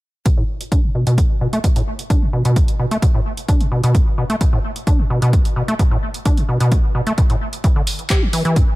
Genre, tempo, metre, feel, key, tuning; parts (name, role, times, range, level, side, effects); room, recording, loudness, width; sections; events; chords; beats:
acid house; 130 BPM; 4/4; straight; B minor; A4 = 441 Hz
acid bass, square; riff; 0.3-8.6 s; B1 to G4; -19 LUFS; equal; tube saturation, tape echo
electronic kick drum; drums; 0.3-8.7 s; -16 LUFS; equal
punchy analog drum machine; drums; 0.3-8.7 s; handclaps, hi-hat; -27 LUFS; right 2 dB
light reverb; -15 LUFS; side -19 dB against mid
0.3-8.8 A section
filter sweep on acid bass 0.3-8.8
| 0.26 0.72 1.18 1.64 | 2.10 2.56 3.02 3.49 | 3.95 4.41 4.87 5.33 | 5.79 6.25 6.72 7.18 | 7.64 8.10 8.56